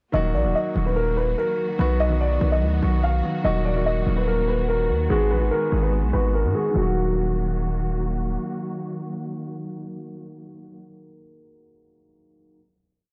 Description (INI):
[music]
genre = hip hop, drill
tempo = 145 BPM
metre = 4/4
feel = half-time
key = Eb minor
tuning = A4 = 440 Hz
[part]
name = dark concert grand piano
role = melody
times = 0.1-8.0 s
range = Gb4 to F5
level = -27 LUFS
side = equal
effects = analog delay
[part]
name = dark concert grand piano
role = accompaniment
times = 0.1-12.6 s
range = Eb3 to Ab4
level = -31 LUFS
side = equal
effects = none
[part]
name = dark studio string section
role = sustained chords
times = 0.1-10.8 s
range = Eb3 to Gb4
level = -34 LUFS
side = equal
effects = none
[part]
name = distorted 808-style bass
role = bass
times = 0.1-8.4 s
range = Eb1 to Ab2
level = -25 LUFS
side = equal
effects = distortion
[sound]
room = small room ambience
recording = dry, gritty hardware recording, transformer saturation, low-pass filter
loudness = -23 LUFS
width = mono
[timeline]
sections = 0.1-6.8 breakdown; 6.8-10.1 final chord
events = none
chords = 0.1 Ebm; 1.8 B; 3.4 Ebm; 5.1 Abm7; 6.8 Ebm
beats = | 0.14 0.55 0.96 1.38 | 1.79 2.21 2.62 3.03 | 3.45 3.86 4.27 4.69 | 5.10 5.52 5.93 6.34 | 6.76 7.17 7.58 8.00 | 8.41 8.83 9.24 9.65